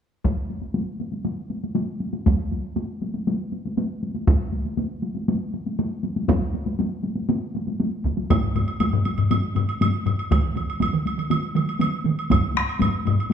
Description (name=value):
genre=japanese traditional, taiko drum ensemble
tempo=119 BPM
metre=4/4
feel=straight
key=none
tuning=none
part: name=taiko ensemble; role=percussion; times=0.2-13.3 s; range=none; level=-25 LUFS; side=left 1 dB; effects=none
part: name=taiko ensemble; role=percussion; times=0.2-12.9 s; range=none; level=-23 LUFS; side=right 1 dB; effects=none
part: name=solo taiko drums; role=percussion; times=8.3-13.2 s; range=none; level=-23 LUFS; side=left 4 dB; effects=none
part: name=woodblock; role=percussion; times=8.3-13.3 s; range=none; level=-30 LUFS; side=right 3 dB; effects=none
part: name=taiko ensemble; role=percussion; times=10.3-12.2 s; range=none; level=-26 LUFS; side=right 5 dB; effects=none
room=wet large studio reverb, RT60 1.4 s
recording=band playing live in one room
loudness=-22 LUFS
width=side -8 dB against mid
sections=0.2-8.3 A section; 8.3-13.3 B section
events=none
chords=none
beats=| 0.25 0.75 1.26 1.76 | 2.27 2.77 3.27 3.78 | 4.28 4.79 5.29 5.79 | 6.29 6.80 7.30 7.80 | 8.30 8.81 9.31 9.81 | 10.31 10.81 11.31 11.81 | 12.31 12.81 13.31